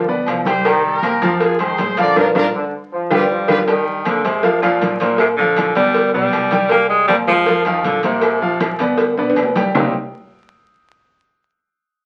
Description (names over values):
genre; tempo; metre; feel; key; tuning
latin, salsa; 158 BPM; 4/4; straight; C minor; A4 = 439 Hz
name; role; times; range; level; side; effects
bright trumpet section; melody; 0.0-3.6 s; D4 to D5; -23 LUFS; equal; none
bright trombone section; second line; 0.0-3.5 s; D3 to F3; -25 LUFS; equal; none
upright bass; bass; 0.0-9.9 s; G1 to F2; -35 LUFS; equal; none
bright baby grand piano; accompaniment; 0.1-9.9 s; C3 to G5; -22 LUFS; equal; none
congas; percussion; 0.1-9.8 s; none; -28 LUFS; equal; none
agogo bells and timbales; percussion; 0.3-9.8 s; none; -27 LUFS; equal; none
claves; percussion; 0.3-9.8 s; none; -33 LUFS; equal; none
cowbell and bongos; percussion; 0.3-9.8 s; none; -23 LUFS; equal; none
breathy tenor saxophone; melody; 3.1-8.8 s; Bb2 to Bb3; -20 LUFS; equal; none
room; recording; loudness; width
wet small room reverb, RT60 0.5 s; very old 78 rpm record, vinyl crackle; -16 LUFS; mono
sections
0.0-3.7 A section; 3.7-9.7 B section; 9.7-11.3 C section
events
band accent 2.2-3.7; drum fill 2.7-3.7, 9.2-9.7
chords
0.0 G7; 0.7 Cm7; 1.4 Fm7; 2.2 Bb; 2.9 G7; 3.7 Cm7; 4.4 F5; 5.2 Bbadd9; 6.0 G; 6.7 C5; 7.5 F5; 8.2 Bbadd9; 9.0 G; 9.7 Cm7